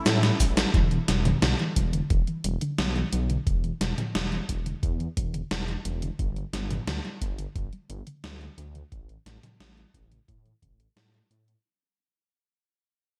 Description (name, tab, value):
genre	synthwave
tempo	88 BPM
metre	4/4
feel	straight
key	E dorian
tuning	A4 = 440 Hz
part	warm analog pad	sustained chords	0.0-0.7 s	E3 to C#4	-41 LUFS	equal	none
part	dark detuned saw bass	bass	0.1-11.6 s	E1 to A2	-32 LUFS	equal	none
part	gated 80s digital drum machine	drums	0.1-11.6 s	cabasa, hi-hat, snare drum, toms	-30 LUFS	equal	gated reverb, gated reverb snare
part	electronic kick drum	drums	0.4-10.8 s	none	-28 LUFS	equal	none
part	soft round pluck	arpeggios	0.7-11.6 s	C#3 to A4	-36 LUFS	equal	subtle chorus, delay
room	light reverb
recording	bright 1980s-style digital production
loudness	-27 LUFS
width	mono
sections	0.7-11.6 A section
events	drum fill 0.2-0.7; fade-out 0.7-11.6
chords	0.0 A; 0.7 Em7; 6.2 G; 8.9 A